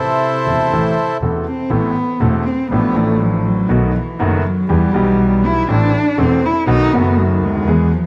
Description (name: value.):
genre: tango.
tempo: 121 BPM.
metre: 4/4.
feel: rubato.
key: A minor.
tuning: A4 = 440 Hz.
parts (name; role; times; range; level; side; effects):
bandoneon; melody; 0.0-1.2 s; E4 to C5; -19 LUFS; equal; none.
dark cello; second line; 0.0-8.1 s; C3 to E4; -20 LUFS; equal; none.
warm concert grand piano; accompaniment; 0.5-7.9 s; E1 to A4; -21 LUFS; equal; none.
warm double bass; bass; 0.5-7.9 s; E1 to E2; -22 LUFS; equal; none.
room: moderate plate reverb, RT60 2.9 s.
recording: none.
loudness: -16 LUFS.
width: mono.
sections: 0.0-1.7 A section; 1.7-8.1 B section.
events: cello solo 1.7-8.1.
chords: 0.0 Am; 2.7 Dm/A; 3.7 B7; 4.7 Em; 5.7 Am; 6.7 B7.